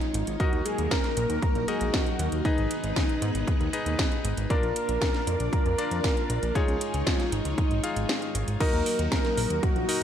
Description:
italo disco; 117 BPM; 4/4; straight; Eb minor; A4 = 441 Hz
wide unison lead; melody; 0.0-10.0 s; Eb4 to Bb4; -30 LUFS; equal; ping-pong delay
string machine, full ensemble; sustained chords; 0.0-10.0 s; Gb3 to D5; -34 LUFS; equal; ensemble chorus
house drum kit; drums; 0.0-10.0 s; crash cymbal, hi-hat, snare drum; -32 LUFS; right 1 dB; studio ambience, gated reverb
fat analog bass; bass; 0.1-9.9 s; Ab1 to Ab2; -30 LUFS; equal
clear electric grand piano; stabs; 0.4-10.0 s; D4 to F5; -34 LUFS; left 4 dB; tape echo
electronic kick drum; drums; 0.4-9.7 s; -27 LUFS; equal; studio ambience
light reverb, digital ambience; -24 LUFS; side -9 dB against mid
0.0-8.6 A section; 8.6-10.0 B section
kick drops out 8.1-8.6
0.4 Ebm; 2.5 Abm; 4.5 Bb; 6.6 Dbadd9; 8.6 Ebm

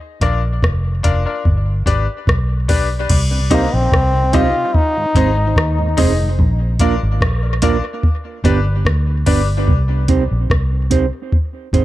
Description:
dub reggae; 73 BPM; 4/4; straight; C minor; A4 = 440 Hz
bright concert grand piano; stabs; 0.2-9.4 s; D4 to Eb5; -24 LUFS; left 5 dB; low-pass filter, tape echo
vintage muted fingered electric bass; bass; 0.2-11.8 s; F1 to Eb2; -17 LUFS; equal
soft vintage rhythm box; drums; 0.2-11.8 s; crash cymbal, hi-hat, kick drum, rim click; -17 LUFS; equal; overdrive
mellow tonewheel organ; accompaniment; 3.3-6.3 s; Ab2 to Eb4; -27 LUFS; left 2 dB; overdrive, chorus vibrato, slow rotary speaker, tape echo
bright trombone; melody; 3.5-6.0 s; Bb3 to F4; -19 LUFS; left 1 dB; tape echo
mellow electric guitar; accompaniment; 3.5-11.8 s; Bb3 to C5; -21 LUFS; right 7 dB; low-pass filter, tape echo
light reverb; -14 LUFS; side -15 dB against mid
0.0-3.1 A section; 3.1-11.8 B section
break 0.0-3.1
0.0 Bb; 1.4 G; 3.1 Cm; 4.7 Ab; 6.4 Bb; 8.0 G; 9.7 Cm; 11.3 Ab

